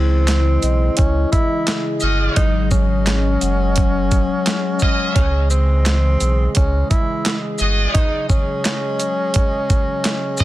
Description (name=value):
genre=hip hop, boom-bap hip-hop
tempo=86 BPM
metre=4/4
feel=swing 58% on 16ths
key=C# harmonic minor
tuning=A4 = 440 Hz
part: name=breathy tenor saxophone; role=melody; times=0.0-10.4 s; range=B#3 to E4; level=-23 LUFS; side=equal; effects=high-pass filter, low-pass filter, digital delay
part: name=vibraphone with soft mallets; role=accompaniment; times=0.0-5.2 s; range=F#3 to E#6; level=-23 LUFS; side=left 5 dB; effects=high-pass filter, low-pass filter
part: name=hollow soft pad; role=sustained chords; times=0.0-10.4 s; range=C#3 to D#5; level=-27 LUFS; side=right 1 dB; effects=chorus, high-pass filter, low-pass filter
part: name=warm sub bass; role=bass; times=0.0-7.9 s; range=F#1 to C#2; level=-17 LUFS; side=equal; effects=none
part: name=dusty soul sampler-style drum kit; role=drums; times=0.3-10.4 s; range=handclaps, hi-hat, kick drum, shaker, snare drum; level=-18 LUFS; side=equal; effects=overdrive
part: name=brilliant trumpet section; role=stabs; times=2.0-10.4 s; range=E4 to D#5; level=-24 LUFS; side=left 1 dB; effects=high-pass filter, low-pass filter, digital delay
room=digital ambience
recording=dense, heavily limited modern master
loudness=-15 LUFS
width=side -15 dB against mid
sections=0.0-10.4 A section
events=none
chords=0.0 C#madd9; 2.4 G#7sus4; 5.2 C#madd9; 7.9 G#7sus4